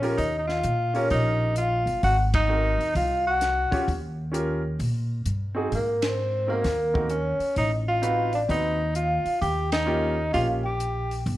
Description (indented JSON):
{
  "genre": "jazz, small-group swing and bop",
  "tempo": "130 BPM",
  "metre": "4/4",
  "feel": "swing 66% on 8ths",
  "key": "Eb mixolydian",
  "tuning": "A4 = 441 Hz",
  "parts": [
    { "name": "vibraphone with soft mallets", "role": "melody", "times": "0.0-11.2 s", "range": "Bb4 to G5", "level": "-26 LUFS", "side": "left 1 dB", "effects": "none" },
    { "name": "breathy tenor saxophone", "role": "second line", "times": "0.0-11.2 s", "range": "Bb3 to G4", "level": "-29 LUFS", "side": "right 2 dB", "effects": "none" },
    { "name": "clear grand piano", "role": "accompaniment", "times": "0.0-10.6 s", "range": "Bb3 to Db5", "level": "-30 LUFS", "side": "right 1 dB", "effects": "none" },
    { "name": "upright bass", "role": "bass", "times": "0.0-11.4 s", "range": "G1 to Bb2", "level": "-27 LUFS", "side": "equal", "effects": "none" },
    { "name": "compact cocktail drum kit", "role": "drums", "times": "0.0-11.4 s", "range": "hi-hat, kick drum, ride cymbal, snare drum", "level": "-32 LUFS", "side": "equal", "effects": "none" }
  ],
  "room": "light reverb",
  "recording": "none",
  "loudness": "-22 LUFS",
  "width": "side -15 dB against mid",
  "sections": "0.0-11.4 A section",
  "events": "band accent 2.3, 6.0, 9.6",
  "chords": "0.0 Eb9; 2.0 Ab9; 3.9 Eb9; 5.7 Ab9; 7.6 Adim7; 9.4 Eb9"
}